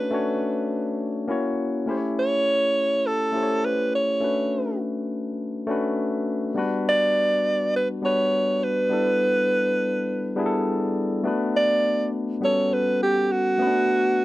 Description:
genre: soul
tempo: 102 BPM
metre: 4/4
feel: straight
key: unclear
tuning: A4 = 444 Hz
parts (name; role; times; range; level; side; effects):
- clear alto saxophone; melody; 0.0-14.2 s; F#4 to D5; -22 LUFS; right 1 dB; none
- barky tine electric piano; accompaniment; 0.0-14.2 s; G3 to C#5; -25 LUFS; left 2 dB; overdrive
room: little or no reverb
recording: dry, close 1970s-style studio recording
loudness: -21 LUFS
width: side -17 dB against mid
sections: 0.0-1.9 A section; 1.9-11.3 B section; 11.3-14.2 C section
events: none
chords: 0.0 Dmaj7; 1.3 F#7; 1.9 A7; 4.2 Bm9; 6.6 Gmaj7; 8.9 A9sus4; 11.3 Bm7; 12.4 A13; 13.6 Bm7

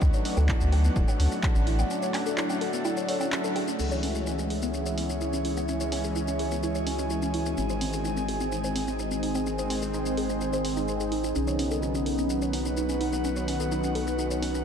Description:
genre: melodic techno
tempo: 127 BPM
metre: 4/4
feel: straight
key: C# minor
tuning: A4 = 440 Hz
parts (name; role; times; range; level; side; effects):
- deep dark ambient pad; sustained chords; 0.0-14.6 s; A3 to G#5; -33 LUFS; right 2 dB; chorus, built-in reverb, sidechain pumping
- woody wave-folded pluck; arpeggios; 0.0-14.6 s; B3 to C#5; -33 LUFS; equal; chorus, sidechain pumping, ping-pong delay
- brassy analog pad; stabs; 0.0-14.6 s; D#3 to D4; -33 LUFS; left 2 dB; chorus, cassette tape, sidechain pumping, ping-pong delay
- round analog bass; bass; 0.0-14.6 s; D1 to D2; -30 LUFS; equal; sidechain pumping
- electronic kick drum; drums; 0.0-1.5 s; none; -25 LUFS; equal; none
- punchy analog drum machine; drums; 0.0-14.6 s; crash cymbal, handclaps, hi-hat, shaker, woodblock; -36 LUFS; equal; none
- airy breathy pad; texture; 0.0-14.6 s; D4 to G#5; -35 LUFS; right 1 dB; chorus, sidechain pumping
- soft octave-layered synth lead; melody; 11.4-14.6 s; C#4 to D#4; -32 LUFS; left 2 dB; chorus, phaser, sidechain pumping, analog delay
room: moderate huge ambient reverb, RT60 4.9 s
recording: dreamy mix soaked in reverb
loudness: -25 LUFS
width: side -7 dB against mid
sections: 0.0-3.8 A section; 3.8-14.6 B section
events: break 1.9-3.8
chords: 0.0 D; 3.8 C#m; 7.6 G#; 11.4 B

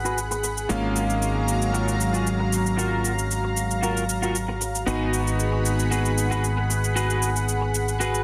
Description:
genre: nu-disco, nu disco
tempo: 115 BPM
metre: 4/4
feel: straight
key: G# dorian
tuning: A4 = 442 Hz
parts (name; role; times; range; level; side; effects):
- bright electric grand piano; accompaniment; 0.0-8.2 s; G#3 to E#5; -32 LUFS; equal; tape echo
- lush unison pad; sustained chords; 0.0-8.2 s; F#3 to B5; -30 LUFS; equal; chorus, phaser
- electric guitar at the edge of break-up; riff; 0.0-8.2 s; E#4 to B4; -32 LUFS; equal; analog chorus, low-pass filter, tape echo
- fingered electric bass; bass; 0.0-8.2 s; G#1; -28 LUFS; equal; none
- cabasa; drums; 0.1-8.2 s; none; -33 LUFS; equal; none
room: light reverb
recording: dense, heavily limited modern master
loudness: -24 LUFS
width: mono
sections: 0.0-8.2 A section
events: filter sweep on clean electric guitar 0.0-8.2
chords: 0.0 G#m7; 0.7 F#maj7/G#; 4.9 G#m7

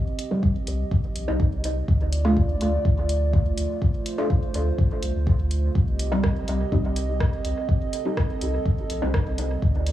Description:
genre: dub techno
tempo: 124 BPM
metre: 4/4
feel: straight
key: C dorian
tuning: A4 = 440 Hz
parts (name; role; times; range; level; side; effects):
- dark analog pad; sustained chords; 0.0-9.9 s; A3 to Eb5; -31 LUFS; right 2 dB; chorus, sidechain pumping, cassette tape
- filtered dub chord stab; stabs; 0.0-9.6 s; G3 to F4; -28 LUFS; equal; phaser, sidechain pumping, cassette tape, dub echo
- deep house drum kit; drums; 0.2-9.9 s; hi-hat, rim click; -34 LUFS; equal; overdrive, cassette tape, dub echo
- electronic kick drum; drums; 0.4-9.7 s; none; -22 LUFS; equal; overdrive, cassette tape
- warm sub bass; bass; 0.7-9.9 s; Bb1 to D2; -25 LUFS; equal; tube saturation, sidechain pumping
room: light reverb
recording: home recording on cassette, small room ambience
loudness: -21 LUFS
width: side -13 dB against mid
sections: 0.0-9.9 A section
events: none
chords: 0.0 Cm; 1.9 Dm; 5.8 Cm

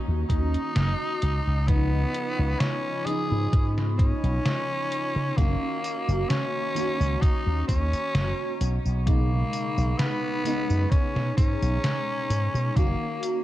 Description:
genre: vaporwave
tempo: 65 BPM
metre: 4/4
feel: swing 53% on 16ths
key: F# major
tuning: A4 = 439 Hz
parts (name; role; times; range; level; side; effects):
- FM electric piano with soft pad layer; accompaniment; 0.0-13.4 s; B2 to F#4; -31 LUFS; equal; phaser, ensemble chorus
- warbly tape-like pad; sustained chords; 0.0-13.4 s; E#4 to C#6; -39 LUFS; right 1 dB; chorus, built-in reverb, vintage 12-bit sampler grit
- slap bass with an envelope filter; bass; 0.1-12.9 s; F#1 to C#3; -25 LUFS; equal; none
- raspy tenor saxophone; melody; 0.3-13.4 s; A#3 to G#4; -30 LUFS; left 1 dB; tape echo
- detuned 8-bit digital drum machine; drums; 0.3-13.4 s; hi-hat, snare drum, tambourine; -29 LUFS; equal; vintage 12-bit sampler grit
- electronic kick drum; drums; 0.3-13.0 s; none; -23 LUFS; equal; vintage 12-bit sampler grit
room: digital ambience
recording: cassette tape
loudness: -23 LUFS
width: side -14 dB against mid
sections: 0.0-13.4 A section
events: none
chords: 0.0 F#6; 1.2 C#9; 5.4 F#6; 8.6 B69; 12.8 F#6

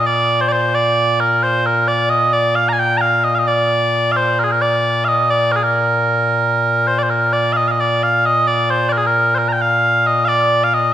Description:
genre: scottish traditional, Scottish pipe music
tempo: 88 BPM (dotted quarters)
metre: 6/8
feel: straight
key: Bb major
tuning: A4 = 440 Hz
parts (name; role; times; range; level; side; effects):
- mellow small bagpipes; solo; 0.0-10.9 s; Bb2 to Bb5; -13 LUFS; equal; none
room: wet recital hall reverb, RT60 1.5 s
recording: dark, warm production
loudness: -13 LUFS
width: side -11 dB against mid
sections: 0.0-6.9 A section; 6.9-10.9 A section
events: none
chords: none

